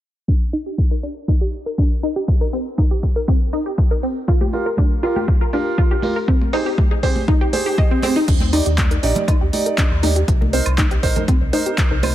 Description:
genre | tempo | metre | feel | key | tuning
progressive house | 120 BPM | 4/4 | straight | Eb major | A4 = 441 Hz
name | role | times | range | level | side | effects
wide unison pluck | arpeggios | 0.3-12.1 s | C4 to Eb5 | -23 LUFS | left 1 dB | cassette tape, sidechain pumping, ping-pong delay
electronic kick drum | drums | 0.3-11.9 s | none | -17 LUFS | equal | none
deep house drum kit | drums | 0.5-12.1 s | crash cymbal, handclaps, hi-hat | -26 LUFS | equal | sidechain pumping on hats, sidechain pumping on cymbals
congas and woodblock | percussion | 4.4-12.1 s | none | -28 LUFS | equal | sidechain pumping on perc
felt-muted upright piano | stabs | 4.5-12.1 s | Eb4 to D5 | -23 LUFS | right 3 dB | sidechain pumping, ping-pong delay
round analog bass | bass | 8.3-12.1 s | Bb1 to Eb2 | -20 LUFS | equal | sidechain pumping
room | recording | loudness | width
little or no reverb | low-pass filter | -16 LUFS | side -13 dB against mid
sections
0.3-8.3 A section; 8.3-12.1 B section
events
filter sweep on synth pluck 0.3-8.3, 8.3-12.1; filter sweep 0.3-8.3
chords
0.3 Ebmaj7; 2.3 Cm7; 4.3 Gm7; 6.3 Abmaj7; 8.3 Ebmaj7; 10.3 Cm7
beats
| 0.28 0.78 1.28 1.78 | 2.28 2.78 3.28 3.78 | 4.28 4.78 5.28 5.78 | 6.28 6.78 7.28 7.78 | 8.28 8.78 9.28 9.78 | 10.28 10.78 11.28 11.78

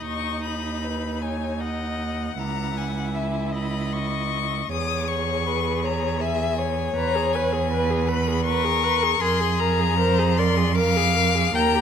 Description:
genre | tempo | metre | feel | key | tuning
classical, slow romantic movement for string quartet | 78 BPM | 3/4 | rubato | unclear | A4 = 439 Hz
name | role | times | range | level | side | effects
rich violin | melody | 0.0-11.8 s | F#5 to D#6 | -27 LUFS | left 11 dB | none
warm violin | second line | 0.0-11.8 s | G#4 to G5 | -28 LUFS | left 4 dB | none
rich viola | accompaniment | 0.0-11.8 s | D#4 to B4 | -29 LUFS | right 3 dB | none
rich cello | bass | 0.0-11.8 s | C#2 to E#2 | -25 LUFS | right 4 dB | none
room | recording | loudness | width
moderate recital hall reverb, RT60 1.5 s | close, detailed microphones | -21 LUFS | side -8 dB against mid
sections
0.0-11.8 A section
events
none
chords
0.1 B/D#; 2.4 C#m; 4.7 C#m/E; 7.0 E; 9.2 A#7/E#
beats
| 0.06 0.83 1.60 | 2.38 3.15 3.93 | 4.71 5.47 6.23 | 6.96 7.71 8.46 | 9.21 9.99 10.78 | 11.55

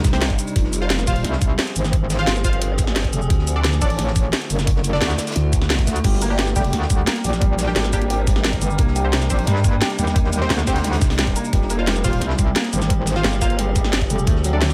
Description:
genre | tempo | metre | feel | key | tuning
dark technical drum and bass | 175 BPM | 4/4 | straight | unclear | A4 = 441 Hz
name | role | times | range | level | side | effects
metallic inharmonic drone | sustained chords | 0.0-14.7 s | C3 to Bb4 | -32 LUFS | equal | chorus, built-in reverb, sidechain pumping
growl bass | bass | 0.0-14.7 s | F1 to D2 | -24 LUFS | equal | chorus, overdrive, sidechain pumping
metallic wobble bass | bass | 0.0-14.3 s | Eb1 to G2 | -23 LUFS | equal | chorus
crunchy breakbeat drum kit | drums | 0.0-14.7 s | hi-hat, snare drum | -36 LUFS | equal | none
drum and bass drum kit | drums | 0.0-14.7 s | crash cymbal, hi-hat, shaker, snare drum | -26 LUFS | equal | none
electronic kick drum | drums | 0.0-14.3 s | none | -22 LUFS | equal | none
filtered dub chord stab | stabs | 0.1-14.6 s | G3 to F5 | -30 LUFS | equal | chorus, tape echo
felt-muted upright piano | arpeggios | 6.0-14.7 s | F#3 to G4 | -28 LUFS | equal | sidechain pumping, tape echo
room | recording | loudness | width
little or no reverb | none | -19 LUFS | mono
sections
0.0-14.7 A section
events
none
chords
0.0 Cm; 0.6 Fm; 3.3 Dadd9; 6.0 Gm; 8.8 Cm; 11.5 Fm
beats
0.22 | 0.56 0.90 1.24 1.59 | 1.93 2.27 2.62 2.96 | 3.30 3.64 3.99 4.33 | 4.67 5.02 5.36 5.70 | 6.04 6.39 6.73 7.07 | 7.42 7.76 8.10 8.44 | 8.79 9.13 9.47 9.82 | 10.16 10.50 10.84 11.19 | 11.53 11.87 12.22 12.56 | 12.90 13.24 13.59 13.93 | 14.27 14.62

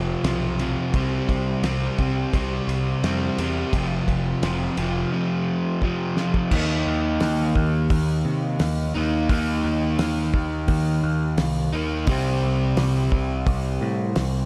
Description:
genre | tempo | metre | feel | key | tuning
classic rock | 86 BPM | 4/4 | straight | unclear | A4 = 440 Hz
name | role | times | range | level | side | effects
crunchy overdriven guitar | riff | 0.0-14.5 s | F2 to Eb4 | -25 LUFS | equal | none
growling picked electric bass | bass | 0.0-14.5 s | F1 to C3 | -29 LUFS | equal | overdrive
cloth-damped thuddy drum kit | drums | 0.2-14.3 s | crash cymbal, hi-hat, kick drum, ride cymbal, snare drum | -29 LUFS | equal | none
room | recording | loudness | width
light reverb, small room ambience | none | -23 LUFS | mono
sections
0.0-6.5 A section; 6.5-14.5 B section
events
drum fill 5.8-6.5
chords
0.0 F5; 1.0 C5; 3.7 F5; 6.5 Eb5; 12.1 C5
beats
0.26 | 0.95 1.65 2.34 3.04 | 3.74 4.43 5.13 5.82 | 6.52 7.21 7.91 8.60 | 9.30 9.99 10.69 11.38 | 12.08 12.77 13.47 14.16

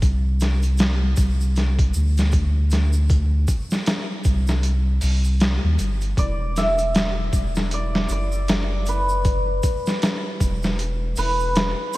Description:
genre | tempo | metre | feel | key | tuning
trip hop | 78 BPM | 4/4 | swing 59% on 16ths | unclear | A4 = 439 Hz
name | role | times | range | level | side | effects
soft dub sub bass | bass | 0.0-11.7 s | E1 to Eb2 | -20 LUFS | equal | none
trip hop sampler-style drum kit | drums | 0.0-12.0 s | hi-hat, kick drum, snare drum | -23 LUFS | equal | none
tube shaker | percussion | 0.0-12.0 s | none | -40 LUFS | right 2 dB | none
cimbalom | melody | 6.2-12.0 s | B4 to E5 | -25 LUFS | equal | tape echo
room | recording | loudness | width
light reverb | vinyl crackle | -18 LUFS | side -18 dB against mid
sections
0.0-12.0 A section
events
none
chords
0.0 N.C.; 6.2 E5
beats
| 0.02 0.79 1.56 2.33 | 3.10 3.87 4.64 5.41 | 6.18 6.95 7.71 8.48 | 9.25 10.02 10.79 11.56

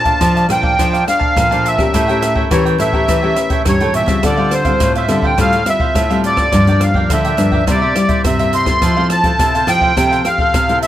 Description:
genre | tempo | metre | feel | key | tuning
samba and choro | 105 BPM | 4/4 | straight | F major | A4 = 438 Hz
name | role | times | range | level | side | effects
accordion | melody | 0.0-10.9 s | C5 to C6 | -16 LUFS | equal | light tremolo tuning, plate reverb
cavaquinho | accompaniment | 0.0-10.9 s | D4 to A5 | -23 LUFS | right 3 dB | none
nylon-string guitar | accompaniment | 0.0-10.9 s | G2 to C5 | -20 LUFS | left 4 dB | none
nylon-string guitar | bass | 0.0-10.9 s | G2 to F3 | -18 LUFS | equal | none
open jazz drum kit | drums | 0.1-10.9 s | hi-hat, kick drum, rim click | -19 LUFS | equal | none
room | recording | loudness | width
moderate studio reverb, RT60 0.8 s | none | -11 LUFS | side -12 dB against mid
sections
0.0-10.9 A section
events
none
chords
0.0 Bbmaj9; 1.9 A7b9; 4.2 Dm11; 6.5 Gm7; 7.7 C7; 8.8 Fmaj7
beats
0.21 0.78 1.36 | 1.93 2.51 3.08 3.66 | 4.23 4.81 5.38 5.95 | 6.53 7.10 7.67 8.25 | 8.82 9.39 9.96 10.54

